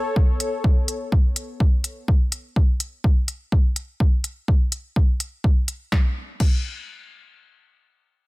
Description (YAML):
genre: melodic techno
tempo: 125 BPM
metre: 4/4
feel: straight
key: unclear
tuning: A4 = 438 Hz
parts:
  - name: warm analog pad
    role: sustained chords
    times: 0.0-2.0 s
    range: B3 to C#5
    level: -29 LUFS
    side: left 2 dB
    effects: chorus, sidechain pumping
  - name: electronic kick drum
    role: drums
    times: 0.2-6.5 s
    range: none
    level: -18 LUFS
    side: equal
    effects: none
  - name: techno drum kit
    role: drums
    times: 0.4-6.5 s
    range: crash cymbal, hi-hat, snare drum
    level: -28 LUFS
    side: left 1 dB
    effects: none
room: little or no reverb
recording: none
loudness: -19 LUFS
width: side -22 dB against mid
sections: 0.0-5.9 A section; 5.9-8.3 B section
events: none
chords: 0.0 A/B; 5.9 N.C.